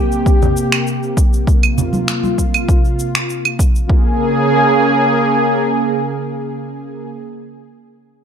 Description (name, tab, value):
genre	sunset chillout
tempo	99 BPM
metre	4/4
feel	straight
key	Bb dorian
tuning	A4 = 441 Hz
part	lush unison pad	sustained chords	0.0-7.1 s	C3 to Ab4	-16 LUFS	equal	chorus
part	electronic shaker, finger snaps and claves	drums	0.1-3.9 s	none	-19 LUFS	right 3 dB	none
part	electronic kick drum	drums	0.3-4.0 s	none	-14 LUFS	equal	none
part	congas	percussion	0.4-2.4 s	none	-21 LUFS	right 2 dB	none
room	moderate digital room reverb, RT60 1.2 s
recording	none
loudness	-13 LUFS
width	side -8 dB against mid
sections	0.0-3.9 A section; 3.9-6.3 B section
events	none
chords	0.0 C7sus4; 3.9 Bbm7